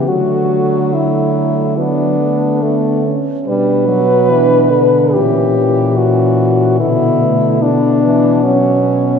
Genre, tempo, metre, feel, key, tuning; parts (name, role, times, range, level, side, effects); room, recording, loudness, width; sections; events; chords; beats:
classical, lyrical piece for horn quartet; 72 BPM; 4/4; rubato; A4 = 440 Hz
warm French horn; melody; 0.0-9.2 s; C#4 to B4; -14 LUFS; left 3 dB
dark French horn; second line; 0.0-9.2 s; F#3 to D4; -19 LUFS; right 4 dB
warm French horn; accompaniment; 0.0-9.2 s; D3 to B3; -18 LUFS; equal
dark French horn; bass; 0.0-9.2 s; A#2 to D3; -17 LUFS; right 1 dB
wet concert hall reverb, RT60 2.4 s; minimal, uncompressed stereo recording; -11 LUFS; side -6 dB against mid
0.0-9.2 A section
0.1 D; 3.5 Bm; 5.1 F#7/A#; 6.8 Bm
| 0.08 0.93 1.77 2.62 | 3.46 4.30 5.14 5.97 | 6.81 7.62 8.44